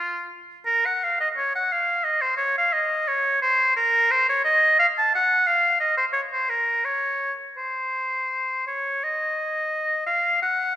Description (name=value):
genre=classical, baroque-style fantasia for unaccompanied oboe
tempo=79-90 BPM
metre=3/4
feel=rubato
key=unclear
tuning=A4 = 438 Hz
part: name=bright oboe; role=solo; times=0.0-10.8 s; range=F4 to A5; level=-20 LUFS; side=equal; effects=none
room=moderate concert hall reverb, RT60 2.1 s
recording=recorded in a church or concert hall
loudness=-20 LUFS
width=side -12 dB against mid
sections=0.0-9.1 A section; 9.1-10.8 B section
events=none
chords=none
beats=| 0.66 1.37 2.06 | 2.76 3.44 4.12 | 4.78 5.45 6.13 | 6.85 7.58 8.32 | 9.05 9.74 10.43